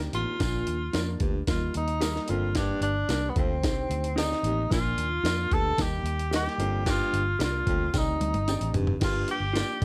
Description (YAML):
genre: uptempo 1960s-style soul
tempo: 112 BPM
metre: 4/4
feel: straight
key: unclear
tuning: A4 = 441 Hz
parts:
  - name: dark upright piano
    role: accompaniment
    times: 0.0-9.8 s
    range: Eb3 to D5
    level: -39 LUFS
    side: equal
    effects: none
  - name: vintage muted fingered electric bass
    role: bass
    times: 0.0-9.8 s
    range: F1 to F2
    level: -33 LUFS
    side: equal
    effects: none
  - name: breakbeat sampler-style drum kit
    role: drums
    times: 0.0-9.8 s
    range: crash cymbal, hi-hat, kick drum, snare drum, toms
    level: -32 LUFS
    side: equal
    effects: none
  - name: warm tenor saxophone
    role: melody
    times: 0.1-9.8 s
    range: Cb4 to A4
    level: -32 LUFS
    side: equal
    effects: none
  - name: clear baritone saxophone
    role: riff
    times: 0.1-9.4 s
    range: Eb2 to Bb2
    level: -37 LUFS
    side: equal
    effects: none
  - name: tambourine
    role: percussion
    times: 0.4-9.7 s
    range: none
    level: -43 LUFS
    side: equal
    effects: none
  - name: mellow electric guitar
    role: stabs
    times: 0.9-9.7 s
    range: Eb4 to Eb5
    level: -38 LUFS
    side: equal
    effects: spring reverb
room: small room ambience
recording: none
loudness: -27 LUFS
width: mono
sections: 0.0-9.0 A section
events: drum fill 7.9-9.0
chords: 0.4 Bb; 1.5 Eb; 2.3 Gm; 3.6 Cmadd9; 4.7 Bb; 5.8 Eb; 6.6 Gm; 7.9 Cmadd9; 9.0 Gm7